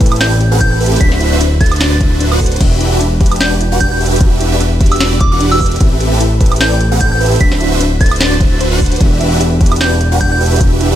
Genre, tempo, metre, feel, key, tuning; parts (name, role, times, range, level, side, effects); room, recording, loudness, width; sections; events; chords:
future bass; 150 BPM; 4/4; swing 55% on 16ths, half-time; E minor; A4 = 440 Hz
thumb-piano-like synth pluck; arpeggios; 0.0-10.9 s; D4 to C5; -23 LUFS; left 3 dB; chorus, sidechain pumping, digital delay
supersaw chords; riff; 0.0-11.0 s; C4 to F#5; -16 LUFS; right 2 dB; phaser, sidechain pumping
fat analog bass; bass; 0.0-11.0 s; D1 to A1; -14 LUFS; equal; sidechain pumping
electronic kick drum; drums; 0.0-10.7 s; -12 LUFS; equal
trap drum kit; drums; 0.0-10.9 s; crash cymbal, hi-hat, snare drum, woodblock; -19 LUFS; right 1 dB
soft synth bell; melody; 0.2-10.4 s; D6 to B6; -19 LUFS; right 1 dB; chorus, sidechain pumping, digital delay
digital ambience; -9 LUFS; side -11 dB against mid
0.0-11.0 A section
0.0 Am9; 1.0 D13; 2.6 Em9; 5.8 Am9; 7.4 D13; 9.0 Em9